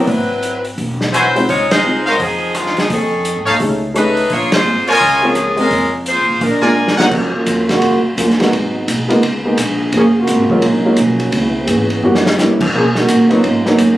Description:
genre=jazz, big band swing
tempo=171 BPM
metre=4/4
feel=swing 62% on 8ths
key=Bb minor, Eb minor from 7.1 s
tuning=A4 = 438 Hz
part: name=clear saxophone section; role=melody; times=0.0-6.8 s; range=Eb3 to Db5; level=-15 LUFS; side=left 1 dB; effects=none
part: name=warm upright piano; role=accompaniment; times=0.0-13.8 s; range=Eb2 to G#4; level=-16 LUFS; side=equal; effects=none
part: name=upright bass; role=bass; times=0.0-14.0 s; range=E1 to B2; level=-20 LUFS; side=right 1 dB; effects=none
part: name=vintage drum kit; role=drums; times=0.1-13.9 s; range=crash cymbal, hi-hat, kick drum, ride cymbal, rim click, snare drum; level=-20 LUFS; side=equal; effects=none
part: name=clear trumpet section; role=stabs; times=1.1-7.1 s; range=Eb4 to Ab5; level=-15 LUFS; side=equal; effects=none
part: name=mellow trombone section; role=second line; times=7.1-14.0 s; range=Db3 to Ab4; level=-15 LUFS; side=right 1 dB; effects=none
room=light reverb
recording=recorded on a phone in the room, club reverb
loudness=-12 LUFS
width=side -15 dB against mid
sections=0.0-7.1 A section; 7.1-14.0 B section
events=band accent 1.7, 4.5; drum fill 6.8-7.1, 12.0-12.4; trombone section solo 7.1-14.0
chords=0.1 Ab7alt; 1.5 Dbmaj9; 2.9 F7alt; 4.3 Bbm7; 6.4 Bb7; 7.1 Ebm9; 8.5 Abm7; 9.2 Dbsus2; 9.9 Gbmaj7; 11.3 Dbm7; 12.0 Gb7b9; 12.7 Bmaj9

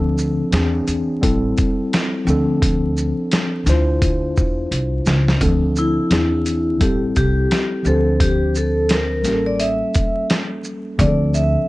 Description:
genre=hip hop, jazz-hop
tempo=86 BPM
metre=4/4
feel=swing 60% on 16ths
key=D minor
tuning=A4 = 438 Hz
part: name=mellow tine electric piano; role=accompaniment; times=0.0-11.7 s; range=E3 to C5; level=-21 LUFS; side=left 1 dB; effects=medium stereo tremolo
part: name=upright bass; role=bass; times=0.0-11.5 s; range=A1 to E2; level=-20 LUFS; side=equal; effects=none
part: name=dusty soul sampler-style drum kit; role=drums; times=0.2-11.5 s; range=hi-hat, kick drum, shaker, snare drum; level=-20 LUFS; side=equal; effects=overdrive
part: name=vibraphone with medium mallets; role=melody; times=5.8-11.7 s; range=E4 to E5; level=-20 LUFS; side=equal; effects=slapback echo
room=small room ambience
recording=vinyl crackle, nothing above 10.4 kHz, faint mains hum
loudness=-16 LUFS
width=side -19 dB against mid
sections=0.0-5.4 A section; 5.4-11.7 B section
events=drum fill 4.7-5.4; vibraphone solo 5.4-11.7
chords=0.0 Dm7; 0.5 E7b13; 1.2 Am7; 2.3 Dm7; 3.7 Dm9; 5.4 Dm7; 6.1 E7b13; 6.8 Am7; 7.9 Dm7; 9.2 A7b9; 11.0 Dm7

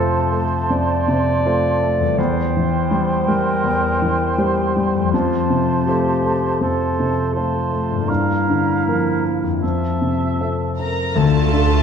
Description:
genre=cinematic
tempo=81 BPM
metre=4/4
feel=rubato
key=F major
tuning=A4 = 440 Hz
part: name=mellow cor anglais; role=second line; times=0.0-10.8 s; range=C5 to F5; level=-26 LUFS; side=right 5 dB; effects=none
part: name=mellow hollow concert flute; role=second line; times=0.0-10.8 s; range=G5 to Bb5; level=-26 LUFS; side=equal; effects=none
part: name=warm clarinet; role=second line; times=0.0-10.8 s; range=E4 to D5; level=-24 LUFS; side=right 2 dB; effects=none
part: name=clear concert grand piano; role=accompaniment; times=0.0-11.8 s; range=D2 to E5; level=-19 LUFS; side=equal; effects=none
part: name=concert harp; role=arpeggios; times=0.0-11.8 s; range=E2 to E5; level=-24 LUFS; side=left 9 dB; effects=none
part: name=warm symphonic violin section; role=melody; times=10.8-11.8 s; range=A5 to Bb5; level=-24 LUFS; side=left 2 dB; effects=none
part: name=dark symphonic viola section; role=accompaniment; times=10.8-11.8 s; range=A4 to Bb4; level=-25 LUFS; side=right 4 dB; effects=none
part: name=warm symphonic violin section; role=second line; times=11.2-11.8 s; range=A3 to F4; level=-26 LUFS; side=left 2 dB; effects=none
part: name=dark symphonic double bass section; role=bass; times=11.2-11.8 s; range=D2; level=-19 LUFS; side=right 5 dB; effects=none
room=moderate concert hall reverb, RT60 2.0 s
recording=dark, warm production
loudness=-16 LUFS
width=side -7 dB against mid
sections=0.0-11.2 A section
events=none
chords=0.0 F; 8.1 Gm7; 9.6 Fmaj7; 11.2 Dm

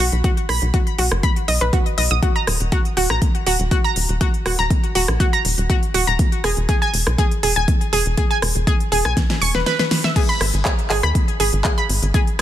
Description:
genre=progressive house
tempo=121 BPM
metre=4/4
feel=straight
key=unclear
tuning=A4 = 439 Hz
part: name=analog pluck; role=arpeggios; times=0.0-12.4 s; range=F#4 to D#6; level=-21 LUFS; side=equal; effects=chorus, sidechain pumping, ping-pong delay
part: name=tight sequencer bass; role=bass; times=0.0-12.4 s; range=D#1 to D#2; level=-20 LUFS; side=equal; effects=tube saturation, sidechain pumping
part: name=pop drum kit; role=drums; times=0.1-12.4 s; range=crash cymbal, handclaps, hi-hat, rim click, snare drum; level=-23 LUFS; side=equal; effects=studio reverb, soft clipping on snare
part: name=electronic kick drum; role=drums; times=0.2-12.2 s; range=none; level=-18 LUFS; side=equal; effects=studio reverb
room=digital ambience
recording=dense, heavily limited modern master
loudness=-16 LUFS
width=side -12 dB against mid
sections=0.0-12.4 A section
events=drum fill 9.2-10.2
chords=0.0 B; 2.2 D#m; 6.2 E; 10.2 G#m

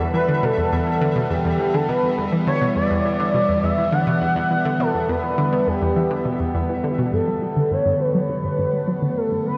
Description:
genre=ambient, sequencer-driven space music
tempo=103 BPM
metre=4/4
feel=straight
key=E minor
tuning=A4 = 444 Hz
part: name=evolving wavetable pad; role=sustained chords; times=0.0-9.6 s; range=D3 to F#5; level=-26 LUFS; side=equal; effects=phaser, built-in reverb, shimmer reverb
part: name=analog pluck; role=riff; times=0.0-9.5 s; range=E2 to G3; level=-26 LUFS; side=equal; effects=chorus, tape echo
part: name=pulsing gated texture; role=texture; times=0.0-7.1 s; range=E5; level=-39 LUFS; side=equal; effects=chorus, built-in reverb, shimmer reverb
part: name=expressive portamento lead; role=melody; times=0.1-9.6 s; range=G4 to F#5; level=-24 LUFS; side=equal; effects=analog chorus, shimmer reverb, tape echo
room=wet cathedral reverb, RT60 6.3 s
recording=in a vast, echoing space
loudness=-21 LUFS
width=mono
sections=0.0-7.1 A section; 7.1-9.6 B section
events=none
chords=0.0 Emadd9; 7.1 Gadd9

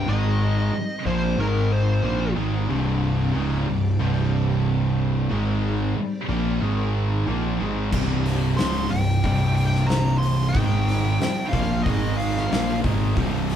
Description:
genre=stoner and doom metal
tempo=92 BPM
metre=4/4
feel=straight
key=C minor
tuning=A4 = 438 Hz
part: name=fuzz lead guitar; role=melody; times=0.0-2.3, 8.6-12.8 s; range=Bb4 to C6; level=-28 LUFS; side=equal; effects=wah, distortion
part: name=string machine, violins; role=sustained chords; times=0.0-13.6 s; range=Ab3 to Eb5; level=-37 LUFS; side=equal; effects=none
part: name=biting overdriven guitar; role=riff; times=0.0-13.6 s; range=C2 to Bb3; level=-30 LUFS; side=equal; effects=none
part: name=thick fuzz guitar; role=riff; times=0.0-13.6 s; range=C2 to Bb3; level=-26 LUFS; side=left 6 dB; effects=distortion
part: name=thick fuzz guitar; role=riff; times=0.0-13.6 s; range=C2 to Bb3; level=-26 LUFS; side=right 6 dB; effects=distortion
part: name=fuzz picked electric bass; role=bass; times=0.0-13.6 s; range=C1 to Bb1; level=-26 LUFS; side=equal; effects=overdrive
part: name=oversized low-tuned drum kit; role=drums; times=7.9-13.6 s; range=crash cymbal, hi-hat, kick drum, snare drum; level=-26 LUFS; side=equal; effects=none
room=moderate large studio reverb, RT60 0.8 s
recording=band playing live in one room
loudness=-20 LUFS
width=side -9 dB against mid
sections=0.0-13.6 A section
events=none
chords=0.1 Ab5; 0.7 Cm; 1.4 Ab5; 2.0 Cm; 5.3 Ab5; 6.0 C5; 6.6 Ab5; 7.3 Cm; 10.5 Ab5; 11.2 C5; 11.9 Ab5; 12.5 Cm

